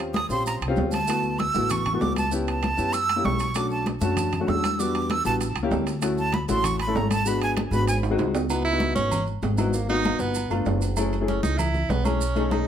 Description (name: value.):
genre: Afro-Cuban jazz.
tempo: 194 BPM.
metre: 4/4.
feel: straight.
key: C# minor from 8.5 s.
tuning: A4 = 439 Hz.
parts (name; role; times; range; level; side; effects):
dark baby grand piano; accompaniment; 0.0-12.7 s; G3 to A4; -27 LUFS; left 3 dB; none.
upright bass; bass; 0.0-12.6 s; F#1 to F#2; -28 LUFS; equal; none.
timbales and agogo bells; percussion; 0.0-12.7 s; none; -32 LUFS; right 7 dB; none.
breathy bright jazz flute; melody; 0.1-8.0 s; G#5 to E6; -26 LUFS; right 3 dB; tape echo.
congas; percussion; 0.1-12.7 s; none; -30 LUFS; left 2 dB; none.
maracas; percussion; 0.1-12.7 s; none; -37 LUFS; right 5 dB; none.
edgy tenor saxophone; second line; 8.5-12.7 s; A#3 to E4; -27 LUFS; right 4 dB; none.
room: light reverb.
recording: none.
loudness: -22 LUFS.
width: side -9 dB against mid.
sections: 0.0-8.5 A section; 8.5-12.7 A section.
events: flute solo 0.0-8.5; drum fill 8.0-8.5; tenor saxophone solo 8.5-12.7.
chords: 0.0 D#13; 1.1 D69; 2.3 C#m7b5; 2.9 F#7b9; 3.6 Bm9; 4.8 Em7; 5.4 A7b9; 6.0 Dmaj9; 7.3 G#m7b5; 7.9 G#7; 8.5 C#m11; 9.7 G#m9; 10.4 G9; 11.0 F#m9.